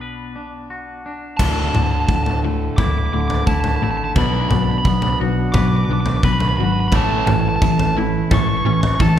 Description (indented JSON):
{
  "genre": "post-rock",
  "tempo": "87 BPM",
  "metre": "4/4",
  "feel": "straight",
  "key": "D major",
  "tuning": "A4 = 438 Hz",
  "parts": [
    { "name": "overdriven electric guitar", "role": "melody", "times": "0.0-9.2 s", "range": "A5 to D6", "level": "-23 LUFS", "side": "right 1 dB", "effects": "none" },
    { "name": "twangy electric guitar", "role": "arpeggios", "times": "0.0-9.2 s", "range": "D2 to B4", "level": "-26 LUFS", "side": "left 1 dB", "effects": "spring reverb" },
    { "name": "hollow-body short-scale picked electric bass", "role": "bass", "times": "0.0-9.2 s", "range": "D1 to B1", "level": "-22 LUFS", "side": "right 1 dB", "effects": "none" },
    { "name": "pedal harmonium", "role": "sustained chords", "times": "1.4-9.2 s", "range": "C#4 to F#5", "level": "-31 LUFS", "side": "right 4 dB", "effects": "none" },
    { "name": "crunchy overdriven guitar", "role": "riff", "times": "1.4-9.2 s", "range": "D2 to B3", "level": "-22 LUFS", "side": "left 6 dB", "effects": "none" },
    { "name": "big rock drum kit", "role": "drums", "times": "1.4-9.2 s", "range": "crash cymbal, kick drum, toms", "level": "-20 LUFS", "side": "equal", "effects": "none" },
    { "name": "biting overdriven guitar", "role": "riff", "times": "6.9-9.2 s", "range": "A2 to A3", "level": "-21 LUFS", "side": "right 9 dB", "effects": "none" }
  ],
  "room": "moderate scoring stage reverb, RT60 2.1 s",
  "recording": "recorded in a church or concert hall",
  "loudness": "-15 LUFS",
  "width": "side -10 dB against mid",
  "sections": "0.0-1.4 A section; 1.4-9.2 B section",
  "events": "build-up 1.4-9.2",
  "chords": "0.0 Bm; 1.4 Dsus2; 4.2 Bm; 6.9 Aadd9",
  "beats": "0.00 0.70 | 1.39 2.09 2.78 3.48 | 4.17 4.86 5.55 6.24 | 6.93 7.62 8.31 9.01"
}